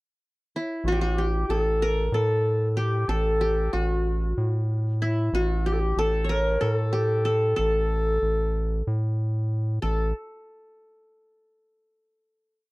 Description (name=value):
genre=Turkish makam ensemble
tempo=187 BPM (eighths)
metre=7/8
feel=straight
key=A makam hicaz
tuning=A4 = 439 Hz
part: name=qanun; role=melody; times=0.6-10.1 s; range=E4 to C#5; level=-28 LUFS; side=equal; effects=none
part: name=mellow clarinet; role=second line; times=0.8-10.1 s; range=E4 to Bb4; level=-28 LUFS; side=left 1 dB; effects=none
part: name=round analog bass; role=bass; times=0.8-10.1 s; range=A1 to A2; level=-25 LUFS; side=equal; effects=none
room=light reverb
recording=dry, close 1970s-style studio recording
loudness=-22 LUFS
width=side -22 dB against mid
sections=0.0-0.8 pickup bar; 0.8-9.8 A section; 9.8-12.1 final note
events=none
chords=none